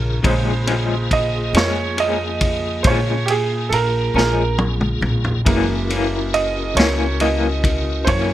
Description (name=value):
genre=slow blues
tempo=46 BPM (dotted quarters)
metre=12/8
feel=straight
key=Bb minor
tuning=A4 = 440 Hz
part: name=bright upright piano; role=accompaniment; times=0.0-8.3 s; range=Db3 to Eb5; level=-22 LUFS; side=right 5 dB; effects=none
part: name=tonewheel organ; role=sustained chords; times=0.0-8.3 s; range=Db3 to Bb4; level=-26 LUFS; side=left 1 dB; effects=slow rotary speaker, chorus vibrato
part: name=upright bass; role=bass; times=0.0-8.3 s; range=Gb1 to Bb2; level=-22 LUFS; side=equal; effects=none
part: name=electric guitar through a small old amp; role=accompaniment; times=0.2-8.3 s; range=Gb2 to Db4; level=-22 LUFS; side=left 4 dB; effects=tremolo
part: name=vintage drum kit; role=drums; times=0.2-8.3 s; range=kick drum, ride cymbal, snare drum, toms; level=-22 LUFS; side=left 1 dB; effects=none
room=little or no reverb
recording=none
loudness=-16 LUFS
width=side -13 dB against mid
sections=0.0-8.3 A section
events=upright piano solo 0.0-8.3; drum fill 4.2-5.5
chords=0.0 Bbm7; 5.5 Gb7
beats=| 0.25 1.55 2.86 4.16 | 5.46 6.77 8.07